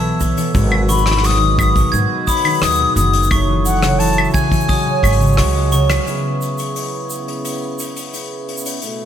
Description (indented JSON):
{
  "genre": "folktronica",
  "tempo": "87 BPM",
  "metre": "4/4",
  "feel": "straight",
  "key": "C# minor",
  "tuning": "A4 = 440 Hz",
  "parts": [
    { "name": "bright reedy baroque flute", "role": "melody", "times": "0.0-5.3 s", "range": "F#5 to D#6", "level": "-20 LUFS", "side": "left 5 dB", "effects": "tape echo" },
    { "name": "glockenspiel with brass mallets", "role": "second line", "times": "0.0-6.0 s", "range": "C#6 to G#6", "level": "-25 LUFS", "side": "right 2 dB", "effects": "vintage 12-bit sampler grit, ping-pong delay" },
    { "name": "hand-pumped harmonium", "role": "sustained chords", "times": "0.0-9.1 s", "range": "B2 to E5", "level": "-26 LUFS", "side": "right 1 dB", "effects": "none" },
    { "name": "concert harp", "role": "arpeggios", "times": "0.0-6.1 s", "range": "B2 to G#3", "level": "-20 LUFS", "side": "equal", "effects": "tape echo" },
    { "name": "upright bass", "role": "bass", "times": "0.0-6.0 s", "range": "F#1 to D#2", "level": "-17 LUFS", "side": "equal", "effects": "tube saturation" },
    { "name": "soft brush drum kit", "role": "drums", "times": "0.2-9.0 s", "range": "claves, hi-hat, rim click, shaker", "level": "-23 LUFS", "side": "left 2 dB", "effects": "none" },
    { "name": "kick drum", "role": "drums", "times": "0.5-5.2 s", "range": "none", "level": "-19 LUFS", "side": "equal", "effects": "none" }
  ],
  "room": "light reverb",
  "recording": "none",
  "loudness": "-14 LUFS",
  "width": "side -10 dB against mid",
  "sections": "0.0-6.1 A section; 6.1-9.1 B section",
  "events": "drum fill 5.0-6.1; band accent 5.9-6.2",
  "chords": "0.0 B7sus4; 0.6 G#m7; 3.3 F#m7; 4.7 G#7sus4; 6.1 C#m7",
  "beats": "| 0.55 1.24 1.93 2.62 | 3.31 4.00 4.69 5.38 | 6.07 6.76 7.45 8.14 | 8.83"
}